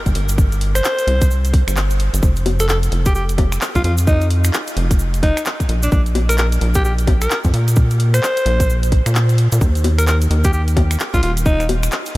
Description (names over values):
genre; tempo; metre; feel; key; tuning
UK garage, two-step garage; 130 BPM; 4/4; swing 61% on 16ths; unclear; A4 = 441 Hz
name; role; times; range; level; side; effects
rubbery square bass; bass; 0.1-12.2 s; Eb1 to Bb2; -16 LUFS; equal; none
electronic kick drum; drums; 0.1-11.6 s; none; -16 LUFS; equal; small room ambience
garage drum kit; drums; 0.1-12.2 s; bongos, finger snaps, handclaps, hi-hat; -24 LUFS; left 2 dB; small room ambience
cabasa; percussion; 0.1-12.1 s; none; -30 LUFS; right 2 dB; none
breathy alto saxophone; melody; 0.8-11.6 s; D4 to C5; -22 LUFS; equal; diffuse ambient delay
room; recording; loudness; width
light reverb; none; -14 LUFS; side -18 dB against mid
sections
0.0-12.2 A section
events
none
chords
0.0 C5; 2.2 F5; 5.7 Bb5; 9.6 Eb5